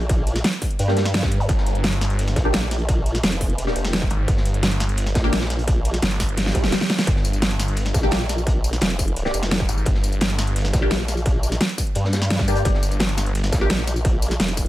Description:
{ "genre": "dark technical drum and bass", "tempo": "172 BPM", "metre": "4/4", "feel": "straight", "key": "G minor", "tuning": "A4 = 440 Hz", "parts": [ { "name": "formant-sweep wobble bass", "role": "bass", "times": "0.0-14.7 s", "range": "F1 to G2", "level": "-23 LUFS", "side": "equal", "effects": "chorus" }, { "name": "crunchy breakbeat drum kit", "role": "drums", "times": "0.0-14.7 s", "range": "hi-hat, snare drum", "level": "-33 LUFS", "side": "equal", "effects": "none" }, { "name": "dubstep drum kit", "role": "drums", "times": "0.1-14.7 s", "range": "hi-hat, snare drum, tambourine", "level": "-23 LUFS", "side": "equal", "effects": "none" }, { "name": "electronic kick drum", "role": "drums", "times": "0.1-14.6 s", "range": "none", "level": "-22 LUFS", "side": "equal", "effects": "distortion" }, { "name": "filtered dub chord stab", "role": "stabs", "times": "0.9-5.3, 8.0-13.7 s", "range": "Bb3 to G4", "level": "-28 LUFS", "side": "left 1 dB", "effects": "phaser, wide subtle chorus, dub echo" }, { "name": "zap and swell", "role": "sound effects", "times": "1.4-1.5, 6.5-7.1 s", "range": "none", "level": "-32 LUFS", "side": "right 1 dB", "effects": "none" }, { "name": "snarling distorted saw bass", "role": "bass", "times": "1.5-13.5 s", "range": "G1 to Ab1", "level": "-22 LUFS", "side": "equal", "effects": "distortion, tube saturation, sidechain pumping" } ], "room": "little or no reverb", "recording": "none", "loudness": "-18 LUFS", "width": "side -15 dB against mid", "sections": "0.0-14.7 A section", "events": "drum fill 6.4-7.1; swell 6.5-7.1", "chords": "0.0 Gm" }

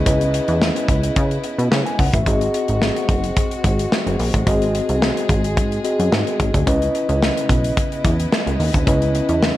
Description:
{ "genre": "early-eighties boogie funk", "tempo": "109 BPM", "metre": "4/4", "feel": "straight", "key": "C# minor", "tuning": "A4 = 440 Hz", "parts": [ { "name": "mellow tine electric piano", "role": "accompaniment", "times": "0.0-9.6 s", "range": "B#3 to G#5", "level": "-22 LUFS", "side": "left 1 dB", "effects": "fast stereo tremolo" }, { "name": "dark chamber string section", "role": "sustained chords", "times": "0.0-9.6 s", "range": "C#3 to D#5", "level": "-28 LUFS", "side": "right 1 dB", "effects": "none" }, { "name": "plucky analog bass", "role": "bass", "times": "0.0-9.5 s", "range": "F#1 to C#3", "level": "-20 LUFS", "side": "equal", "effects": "none" }, { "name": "modern studio drum kit", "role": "drums", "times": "0.1-9.6 s", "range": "hi-hat, kick drum, snare drum", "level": "-20 LUFS", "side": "equal", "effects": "gated reverb" } ], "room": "light reverb, small room ambience", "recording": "none", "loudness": "-16 LUFS", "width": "side -15 dB against mid", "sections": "0.0-9.6 A section", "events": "none", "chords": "0.0 C#m9; 2.3 G#7; 6.7 C#m9" }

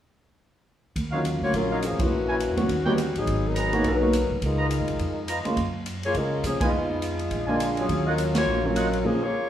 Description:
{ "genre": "jazz, big band swing", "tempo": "208 BPM", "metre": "4/4", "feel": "swing 59% on 8ths", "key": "Eb minor", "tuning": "A4 = 439 Hz", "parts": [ { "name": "upright bass", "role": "bass", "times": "1.0-9.0 s", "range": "Ab1 to C3", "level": "-29 LUFS", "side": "equal", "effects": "none" }, { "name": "swinging big-band drum kit", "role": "drums", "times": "1.0-9.0 s", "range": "hi-hat, kick drum, ride cymbal, snare drum", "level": "-33 LUFS", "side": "equal", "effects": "none" }, { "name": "warm baby grand piano", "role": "accompaniment", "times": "1.1-9.2 s", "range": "Bb2 to G4", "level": "-27 LUFS", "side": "right 2 dB", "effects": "none" }, { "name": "mellow trumpet section", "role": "stabs", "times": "1.1-8.9 s", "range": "Eb4 to Bb5", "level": "-32 LUFS", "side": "right 1 dB", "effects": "none" }, { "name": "warm saxophone section", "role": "melody", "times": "1.4-9.5 s", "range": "Fb3 to Db5", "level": "-26 LUFS", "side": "left 2 dB", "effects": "none" } ], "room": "wet large studio reverb, RT60 1.3 s", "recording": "heard from further back in the room, studio reverb", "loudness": "-22 LUFS", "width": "side -10 dB against mid", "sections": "1.0-9.5 A section", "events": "band accent 2.0, 6.6, 8.3", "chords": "1.0 Ebm9; 2.1 Bbm7b5; 2.7 Eb7alt; 3.3 Abm9; 4.4 Db13; 5.6 Gbmaj9; 6.7 Fm7b5; 7.3 Bb7; 7.9 Ebm9" }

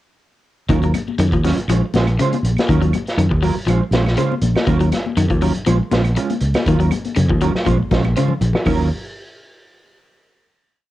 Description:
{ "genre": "afrobeat", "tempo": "120 BPM", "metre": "4/4", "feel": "straight", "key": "Eb dorian", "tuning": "A4 = 439 Hz", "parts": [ { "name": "electric guitar at the edge of break-up", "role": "arpeggios", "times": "0.7-8.8 s", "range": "Db3 to Gb3", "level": "-21 LUFS", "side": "left 4 dB", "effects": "none" }, { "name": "mellow electric guitar", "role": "stabs", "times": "0.7-8.9 s", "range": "Gb3 to C5", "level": "-23 LUFS", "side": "right 6 dB", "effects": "ensemble chorus" }, { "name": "fingered electric bass", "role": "bass", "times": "0.7-8.9 s", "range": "Bb1 to Gb2", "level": "-17 LUFS", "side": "equal", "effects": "none" }, { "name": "vintage drum kit", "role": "drums", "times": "0.7-8.8 s", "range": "hi-hat, kick drum, snare drum", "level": "-22 LUFS", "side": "equal", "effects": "none" }, { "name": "claves", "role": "percussion", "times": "0.9-8.8 s", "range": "none", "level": "-34 LUFS", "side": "right 9 dB", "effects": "none" }, { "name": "congas", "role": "percussion", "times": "0.9-8.8 s", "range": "none", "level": "-25 LUFS", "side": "left 7 dB", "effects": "none" } ], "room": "light reverb", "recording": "home recording on cassette", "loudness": "-15 LUFS", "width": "side -15 dB against mid", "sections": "0.7-8.7 groove; 8.7-10.7 final chord", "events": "drum fill 8.0-8.7", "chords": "0.7 Ebm9; 1.7 Bbm9; 2.7 Ebm9; 3.7 Bbm9; 4.7 Ebm9; 5.7 Bbm9; 6.7 Ebm9; 7.7 Bbm9; 8.7 Ebm9" }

